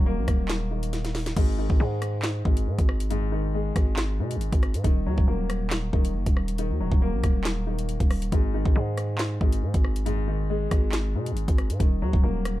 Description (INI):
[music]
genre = hip hop, drill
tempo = 138 BPM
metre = 4/4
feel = half-time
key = unclear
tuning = A4 = 440 Hz
[part]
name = warm baby grand piano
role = accompaniment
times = 0.0-12.6 s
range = G#2 to A#3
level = -31 LUFS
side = left 3 dB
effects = none
[part]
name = growling 808-style bass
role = bass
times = 0.0-12.6 s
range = D#1 to B2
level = -27 LUFS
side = equal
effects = none
[part]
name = drill drum kit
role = drums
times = 0.3-12.6 s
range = crash cymbal, handclaps, hi-hat, kick drum, rim click, snare drum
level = -23 LUFS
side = equal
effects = none
[sound]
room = little or no reverb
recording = dark, warm production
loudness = -22 LUFS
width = side -16 dB against mid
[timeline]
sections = 0.0-1.4 A section; 1.4-12.6 B section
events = drum fill 0.9-1.4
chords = 0.0 D#m; 1.4 G#5; 4.8 D#m; 8.3 G#5; 11.8 D#m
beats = 0.06 0.50 0.93 | 1.37 1.80 2.23 2.67 | 3.10 3.54 3.97 4.41 | 4.84 5.28 5.71 6.15 | 6.58 7.02 7.45 7.89 | 8.32 8.76 9.19 9.63 | 10.06 10.50 10.93 11.37 | 11.80 12.23